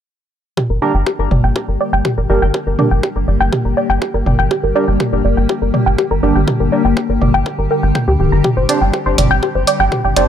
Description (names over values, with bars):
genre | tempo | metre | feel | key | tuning
melodic techno | 122 BPM | 4/4 | straight | G minor | A4 = 438 Hz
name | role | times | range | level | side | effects
evolving wavetable pad | sustained chords | 1.0-10.3 s | D3 to G4 | -20 LUFS | left 3 dB | chorus, built-in reverb, phaser, sidechain pumping
tight sequenced synth | arpeggios | 0.6-10.2 s | G4 to Bb5 | -18 LUFS | equal | chorus, phaser, sidechain pumping, ping-pong delay
electronic kick drum | drums | 0.6-10.0 s | none | -23 LUFS | equal | overdrive, high-pass filter on kick
punchy analog drum machine | drums | 0.6-10.3 s | hi-hat, toms | -19 LUFS | right 1 dB | none
tight sequencer bass | bass | 0.7-10.3 s | D1 to D2 | -16 LUFS | equal | sidechain pumping
sync-sweep polysynth | stabs | 0.8-10.3 s | D4 to C5 | -20 LUFS | right 2 dB | chorus, sidechain pumping, ping-pong delay
room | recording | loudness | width
light reverb, digital ambience | none | -13 LUFS | side -9 dB against mid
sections
0.6-10.3 A section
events
filter sweep on analog synth bass 0.6-10.3; filter sweep on synth arpeggio sound 0.6-10.3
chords
0.6 Gm; 8.4 Csus2/G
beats
| 0.57 1.07 1.56 2.05 | 2.54 3.03 3.53 4.02 | 4.51 5.00 5.49 5.99 | 6.48 6.97 7.46 7.95 | 8.44 8.94 9.43 9.92